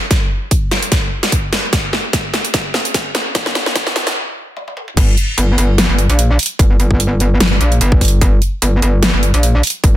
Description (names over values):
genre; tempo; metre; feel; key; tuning
heavy wobble dubstep; 148 BPM; 4/4; swing 55% on 16ths, half-time; G minor; A4 = 440 Hz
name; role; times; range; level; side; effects
dubstep drum kit; drums; 0.1-9.9 s; crash cymbal, hi-hat, snare drum, toms; -16 LUFS; equal; overdrive, high-pass filter on hats, high-pass filter on snare, high-pass filter on toms, high-pass filter on cymbals, high-pass filter on room
electronic kick drum; drums; 0.1-9.9 s; none; -14 LUFS; equal; none
metallic wobble bass; bass; 5.0-10.0 s; G1 to Bb1; -13 LUFS; equal; chorus, overdrive
room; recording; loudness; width
little or no reverb; dense, heavily limited modern master, high-pass filter; -12 LUFS; side -13 dB against mid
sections
0.0-5.0 A section; 5.0-10.0 B section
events
build-up 0.0-5.0; drum fill 0.0-4.2, 4.6-5.0; filter sweep 0.0-5.0; stop 4.2-5.0; drop 5.0-10.0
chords
none